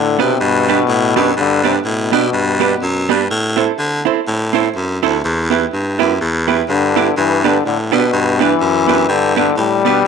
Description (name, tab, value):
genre	ska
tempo	124 BPM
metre	4/4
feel	swing 58% on 8ths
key	G major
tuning	A4 = 441 Hz
part	growling trombone	melody	0.0-3.1, 6.7-10.1 s	B2 to G3	-16 LUFS	left 9 dB	none
part	raspy baritone saxophone	bass	0.0-10.1 s	D2 to D3	-17 LUFS	equal	transformer saturation
part	archtop guitar, miked and amplified	accompaniment	0.2-10.0 s	B3 to C5	-17 LUFS	right 11 dB	slapback echo
room	moderate plate reverb, RT60 3.3 s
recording	1960s-style stereo with parts hard left and right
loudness	-13 LUFS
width	side -6 dB against mid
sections	0.0-10.1 A section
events	none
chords	0.0 G; 3.3 Am; 5.2 Em; 7.2 G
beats	0.40 0.88 | 1.37 1.85 2.33 2.82 | 3.30 3.78 4.26 4.75 | 5.23 5.71 6.20 6.68 | 7.16 7.64 8.12 8.61 | 9.09 9.57 10.05